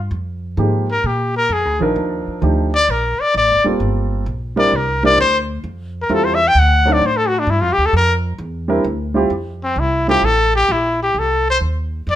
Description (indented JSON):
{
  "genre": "jazz, small-group swing and bop",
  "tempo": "131 BPM",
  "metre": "4/4",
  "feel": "swing 67% on 8ths",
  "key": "F major",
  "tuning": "A4 = 444 Hz",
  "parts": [
    { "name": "upright bass", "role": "bass", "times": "0.0-12.2 s", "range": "Eb1 to Bb2", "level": "-20 LUFS", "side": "equal", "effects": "none" },
    { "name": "warm concert grand piano", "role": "accompaniment", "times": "0.6-10.2 s", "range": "F3 to Bb4", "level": "-19 LUFS", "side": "right 2 dB", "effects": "none" },
    { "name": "clear trumpet", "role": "melody", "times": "0.9-12.2 s", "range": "C4 to G5", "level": "-15 LUFS", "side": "left 2 dB", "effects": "none" }
  ],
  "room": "moderate studio reverb, RT60 0.8 s",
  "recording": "none",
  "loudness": "-14 LUFS",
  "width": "side -12 dB against mid",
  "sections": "0.0-9.3 A section; 9.3-12.2 A section",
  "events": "trumpet solo 0.0-12.2",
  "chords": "0.1 Fm11; 1.0 Bb; 2.0 Ebmaj9#11; 3.8 Gm11; 4.7 C9; 5.6 Fmaj9; 6.6 D7b9; 7.5 G5; 8.4 C9; 9.3 Fmaj9; 11.2 F7 (rootless)"
}